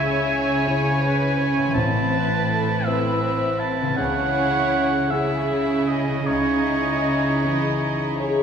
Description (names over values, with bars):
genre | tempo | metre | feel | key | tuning
cinematic | 51-55 BPM (dotted quarters) | 6/8 | rubato | C# minor | A4 = 440 Hz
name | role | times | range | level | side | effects
dark studio violin section | melody | 0.0-8.4 s | G#4 to C#5 | -32 LUFS | left 3 dB | none
bright oboe | second line | 0.0-8.2 s | C#5 to A5 | -25 LUFS | right 2 dB | none
rich studio violin section | second line | 0.0-8.4 s | C4 to E4 | -28 LUFS | left 1 dB | none
warm concert grand piano | accompaniment | 0.0-8.4 s | A1 to B4 | -28 LUFS | left 1 dB | none
warm studio viola section | accompaniment | 0.0-8.4 s | C4 to E5 | -28 LUFS | equal | none
concert harp | arpeggios | 0.0-8.4 s | A2 to G#5 | -32 LUFS | left 3 dB | none
warm studio cello section | bass | 0.0-8.3 s | A2 to C#3 | -25 LUFS | right 2 dB | none
dark French horn section | sustained chords | 8.2-8.4 s | G#4 | -21 LUFS | left 4 dB | none
room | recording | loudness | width
wet recital hall reverb, RT60 1.6 s | recorded in a church or concert hall | -19 LUFS | side -7 dB against mid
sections
0.0-8.4 A section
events
none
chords
0.0 C#m; 1.8 Amadd9; 4.0 C#m; 6.3 C#madd9